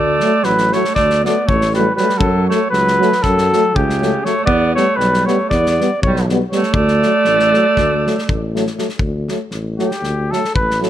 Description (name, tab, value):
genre	balkan folk, Balkan brass band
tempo	238 BPM (eighths)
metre	9/8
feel	straight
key	D major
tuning	A4 = 440 Hz
part	warm flugelhorn	melody	0.0-10.8 s	G4 to D5	-16 LUFS	equal	none
part	clear alto saxophone	second line	0.0-8.6 s	C#3 to B3	-20 LUFS	right 5 dB	none
part	mellow tuba	bass	0.0-10.9 s	A1 to F#2	-20 LUFS	left 1 dB	none
part	mellow French horn	accompaniment	0.2-10.9 s	A3 to B3	-23 LUFS	left 9 dB	none
part	mellow euphonium	accompaniment	0.2-10.9 s	F#3 to G3	-24 LUFS	right 6 dB	none
part	loose indie drum kit	percussion	0.2-10.9 s	kick drum, snare drum	-22 LUFS	left 1 dB	none
room	light reverb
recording	none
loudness	-13 LUFS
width	side -11 dB against mid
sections	0.0-9.0 A section; 9.0-10.9 B section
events	flugelhorn solo 9.0-10.9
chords	0.0 D; 2.2 F#m; 4.5 Em; 6.7 D